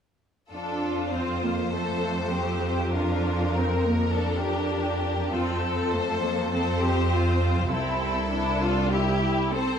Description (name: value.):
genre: quick classical-period movement for symphony orchestra.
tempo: 100 BPM.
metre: 4/4.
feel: straight.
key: unclear.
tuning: A4 = 440 Hz.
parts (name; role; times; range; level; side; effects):
bright studio violin section; melody; 0.5-9.8 s; G4 to C5; -32 LUFS; left 4 dB; none.
rich studio violin section; second line; 0.5-9.8 s; E4 to Bb4; -29 LUFS; left 3 dB; none.
rich studio viola section; accompaniment; 0.5-9.8 s; A3 to E4; -29 LUFS; right 1 dB; none.
clear studio cello section; bass; 0.5-9.8 s; C2 to F2; -27 LUFS; right 2 dB; none.
room: wet recital hall reverb, RT60 1.2 s.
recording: dark, warm production.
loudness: -23 LUFS.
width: side -8 dB against mid.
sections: 0.5-9.8 A section.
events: none.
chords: 0.5 Gm7/F; 5.3 F; 7.7 C.